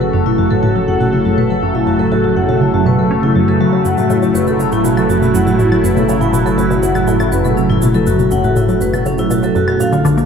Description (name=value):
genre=ambient, sequencer-driven space music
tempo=121 BPM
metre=4/4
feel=straight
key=F# minor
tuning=A4 = 441 Hz
part: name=phased analog pad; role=sustained chords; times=0.0-10.3 s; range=Db3 to A4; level=-15 LUFS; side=right 1 dB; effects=phaser, chorus
part: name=vibraphone with medium hard mallets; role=arpeggios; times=0.0-10.2 s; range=C#4 to F#5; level=-18 LUFS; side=moving between left 6 dB and right 2 dB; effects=auto-pan, tape echo
part: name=resonant blip pluck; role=riff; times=0.0-10.2 s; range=F#2 to C#4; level=-16 LUFS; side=equal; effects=phaser, tape echo
part: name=warm sub bass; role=bass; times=0.0-10.3 s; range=F#1 to A#1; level=-27 LUFS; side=equal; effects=tube saturation
part: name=shaker and claves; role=percussion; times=3.9-10.3 s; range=none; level=-29 LUFS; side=right 2 dB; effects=overdrive, tape echo
room=wet cathedral reverb, RT60 5.2 s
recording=in a vast, echoing space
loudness=-11 LUFS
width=side -6 dB against mid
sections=0.0-10.3 A section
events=fade-in on sub bass 0.0-10.3; filter sweep on synth arpeggio sound 0.0-10.3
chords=0.0 F#m